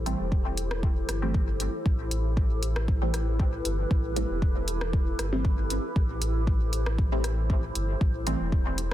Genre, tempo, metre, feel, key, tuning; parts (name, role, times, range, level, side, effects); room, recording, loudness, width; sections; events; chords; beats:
dub techno; 117 BPM; 4/4; straight; A minor; A4 = 442 Hz
granular cloud pad; sustained chords; 0.0-8.9 s; E4 to C5; -34 LUFS; equal; built-in reverb, sidechain pumping
warm sub bass; bass; 0.0-8.9 s; E1 to A1; -29 LUFS; equal; sidechain pumping
filtered dub chord stab; stabs; 0.1-8.4 s; E3 to C4; -34 LUFS; right 1 dB; chorus, phaser, dub echo
deep house drum kit; drums; 0.1-8.9 s; hi-hat, rim click; -36 LUFS; equal; dub echo
electronic kick drum; drums; 0.3-8.6 s; -26 LUFS; equal
little or no reverb; dense, heavily limited modern master; -25 LUFS; side -13 dB against mid
0.0-8.9 A section
0.0 Am7
0.32 0.83 1.34 | 1.86 2.37 2.88 3.40 | 3.91 4.42 4.93 5.45 | 5.96 6.47 6.99 7.50 | 8.01 8.52